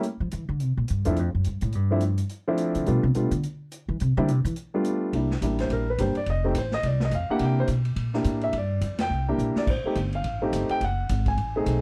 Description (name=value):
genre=jazz piano trio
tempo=211 BPM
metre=4/4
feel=swing 59% on 8ths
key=C mixolydian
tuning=A4 = 439 Hz
part: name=warm grand piano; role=melody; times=0.0-11.8 s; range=F3 to Ab5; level=-28 LUFS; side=equal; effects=none
part: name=swinging big-band drum kit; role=drums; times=0.0-11.7 s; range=crash cymbal, hi-hat, kick drum, ride cymbal, snare drum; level=-36 LUFS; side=equal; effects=none
part: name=upright bass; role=bass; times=0.2-11.8 s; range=F1 to F3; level=-28 LUFS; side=equal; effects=none
room=little or no reverb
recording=none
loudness=-26 LUFS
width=mono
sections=0.0-5.1 A section; 5.1-11.8 B section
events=upright bass solo 0.0-5.1; band accent 9.0; drum fill 9.4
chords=0.0 N.C.; 0.6 Dm7; 2.9 G7; 4.0 C; 4.6 G7; 5.1 C7; 6.3 F7; 7.4 C7; 8.5 G5; 9.1 C7; 9.7 F7; 10.8 F#dim7